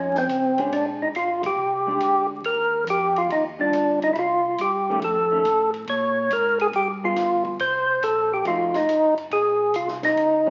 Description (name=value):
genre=soul jazz organ trio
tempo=140 BPM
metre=4/4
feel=swing 67% on 8ths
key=unclear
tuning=A4 = 440 Hz
part: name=percussive tonewheel organ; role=melody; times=0.0-10.5 s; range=C4 to Db5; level=-22 LUFS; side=equal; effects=slow rotary speaker, overdrive
part: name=mellow tonewheel organ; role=bass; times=0.0-10.5 s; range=F1 to Bb2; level=-40 LUFS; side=equal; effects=slow rotary speaker
part: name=compact cocktail drum kit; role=drums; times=0.1-10.3 s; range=hi-hat, kick drum, ride cymbal, snare drum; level=-42 LUFS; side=equal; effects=none
part: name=vintage hollow-body jazz guitar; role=accompaniment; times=0.6-10.5 s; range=Eb3 to Ab4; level=-33 LUFS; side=equal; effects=none
room=wet large studio reverb, RT60 1.2 s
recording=very old 78 rpm record, vinyl crackle, nothing above 7.6 kHz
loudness=-22 LUFS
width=mono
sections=0.0-10.5 A section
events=band accent 1.4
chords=0.0 Bbm7 (rootless); 0.7 Bb13; 2.4 Ebmaj9; 4.2 Cm; 5.0 Faug7; 5.9 Bbm7; 6.7 G7b9; 7.6 Gmadd11; 8.4 F7b9; 9.3 Bbm7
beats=0.28 | 0.71 1.14 1.57 2.00 | 2.43 2.86 3.29 3.72 | 4.15 4.58 5.01 5.44 | 5.87 6.30 6.73 7.16 | 7.59 8.02 8.45 8.88 | 9.30 9.73 10.16